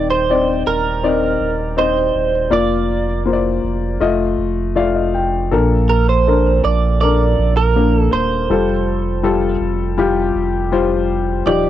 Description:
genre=pop ballad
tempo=81 BPM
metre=4/4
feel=straight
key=Bb major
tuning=A4 = 440 Hz
part: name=direct-recorded clean electric guitar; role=melody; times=0.0-11.7 s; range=Bb4 to D5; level=-19 LUFS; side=right 6 dB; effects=cassette tape
part: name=warm baby grand piano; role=accompaniment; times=0.0-11.7 s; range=Bb2 to G5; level=-17 LUFS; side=left 5 dB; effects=cassette tape
part: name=warm sub bass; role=bass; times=0.0-11.7 s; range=Eb1 to Bb1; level=-19 LUFS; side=right 2 dB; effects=none
room=moderate booth ambience, RT60 0.2 s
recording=home recording on cassette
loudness=-14 LUFS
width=side -12 dB against mid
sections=0.0-11.7 A section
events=grand piano fill 4.4-5.5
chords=0.0 Cmadd9/Eb; 2.5 Bb/F; 4.0 F7; 5.5 Bbmaj7; 8.5 Fadd9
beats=0.30 1.03 1.77 | 2.52 3.26 4.01 4.76 | 5.52 6.27 7.02 7.76 | 8.50 9.24 9.98 10.72 | 11.46

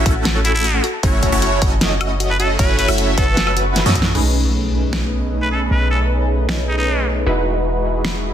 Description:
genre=future bass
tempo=154 BPM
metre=4/4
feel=half-time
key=unclear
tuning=A4 = 440 Hz
part: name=airy dreamy lead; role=arpeggios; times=0.0-4.1 s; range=A4 to E5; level=-27 LUFS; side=right 1 dB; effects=chorus, sidechain pumping, tape echo
part: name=supersaw stab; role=riff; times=0.0-8.3 s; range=G#3 to E5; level=-21 LUFS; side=equal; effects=phaser, sidechain pumping, low-pass filter, tape echo
part: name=warm 808-style bass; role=bass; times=0.0-8.3 s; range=E1 to F#2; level=-20 LUFS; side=equal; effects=sidechain pumping
part: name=thumb-piano-like synth pluck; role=arpeggios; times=0.1-4.1 s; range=F#4 to C#6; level=-31 LUFS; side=left 3 dB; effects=chorus, sidechain pumping, tape echo
part: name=big-room dance drum kit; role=drums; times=0.1-8.1 s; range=crash cymbal, finger snaps, hi-hat, snare drum, woodblock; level=-21 LUFS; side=left 1 dB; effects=none
part: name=electronic kick drum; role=drums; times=0.1-4.0 s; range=none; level=-18 LUFS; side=equal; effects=none
part: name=trumpet with straight mute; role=melody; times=0.4-7.1 s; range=D#4 to B4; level=-22 LUFS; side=equal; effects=sidechain pumping, tape echo
part: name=airy breathy pad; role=sustained chords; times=4.1-8.3 s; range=E3 to D#5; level=-29 LUFS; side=right 1 dB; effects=chorus, sidechain pumping
part: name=impact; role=sound effects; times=4.2-5.7 s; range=none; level=-30 LUFS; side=equal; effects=none
room=light reverb, digital ambience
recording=dense, heavily limited modern master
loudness=-15 LUFS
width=side -10 dB against mid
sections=0.0-4.2 A section; 4.2-8.3 B section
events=drop 0.0-4.2; drum fill 3.8-4.2; impact 4.2-5.7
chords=0.0 A6; 0.8 F#m7; 4.2 B13; 7.3 Emaj9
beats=0.25 0.64 | 1.03 1.42 1.81 2.20 | 2.59 2.98 3.37 3.76 | 4.15 4.54 4.93 5.32 | 5.71 6.10 6.49 6.88 | 7.27 7.66 8.05

